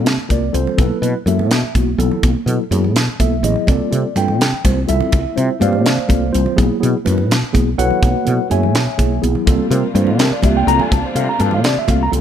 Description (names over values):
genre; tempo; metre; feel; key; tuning
electric jazz fusion; 83 BPM (dotted quarters); 6/8; straight; unclear; A4 = 440 Hz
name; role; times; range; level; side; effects
mellow tine electric piano; accompaniment; 0.0-12.2 s; F#3 to Bb5; -18 LUFS; left 1 dB; medium stereo tremolo
woody fretless electric bass; bass; 0.0-12.2 s; A1 to C3; -18 LUFS; equal; none
crisp fusion drum kit; drums; 0.1-12.2 s; hi-hat, kick drum, snare drum; -18 LUFS; equal; none
congas; percussion; 0.1-12.0 s; none; -23 LUFS; right 5 dB; none
warm studio string section; sustained chords; 9.5-12.2 s; C3 to F4; -26 LUFS; left 2 dB; none
room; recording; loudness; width
light reverb; none; -13 LUFS; side -9 dB against mid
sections
0.0-12.2 A section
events
drum fill 3.3-3.7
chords
0.0 C7sus4; 0.8 B7sus4; 3.7 Csus24; 6.6 B13sus4; 9.5 C13sus4